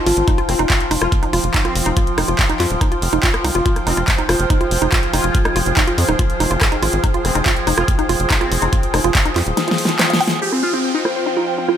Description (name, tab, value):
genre	psychedelic trance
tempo	142 BPM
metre	4/4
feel	straight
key	F minor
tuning	A4 = 440 Hz
part	overtone-sweeping drone	sustained chords	0.0-11.8 s	F3 to Ab4	-23 LUFS	left 1 dB	chorus, built-in reverb, sidechain pumping
part	woody wave-folded pluck	riff	0.0-11.7 s	Eb4 to G5	-22 LUFS	moving between left 2 dB and right 6 dB	chorus, auto-pan, sidechain pumping, dub echo
part	warm studio string section	texture	0.0-11.8 s	F4 to G5	-26 LUFS	right 1 dB	sidechain pumping
part	tight sequencer bass	bass	0.1-9.5 s	Eb1 to F2	-20 LUFS	equal	none
part	big-room dance drum kit	drums	0.1-11.8 s	handclaps, hi-hat, rim click, snare drum	-20 LUFS	equal	low-pass filter on hats, studio ambience, low-pass filter on toms, low-pass filter on snare
part	electronic kick drum	drums	0.3-9.2 s	none	-18 LUFS	equal	studio ambience
part	metallic wobble bass	second line	0.5-8.7 s	C4 to F4	-30 LUFS	left 2 dB	none
part	overdriven synth lead	melody	10.4-11.6 s	C4 to G4	-20 LUFS	left 2 dB	phaser, sidechain pumping, dub echo
part	downlifter	sound effects	10.4-11.8 s	none	-25 LUFS	right 4 dB	none
room	light reverb, digital ambience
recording	none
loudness	-14 LUFS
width	side -9 dB against mid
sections	0.0-10.4 A section; 10.4-11.8 B section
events	fade-in on string section 0.0-10.4; drum fill 9.6-10.4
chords	0.0 F5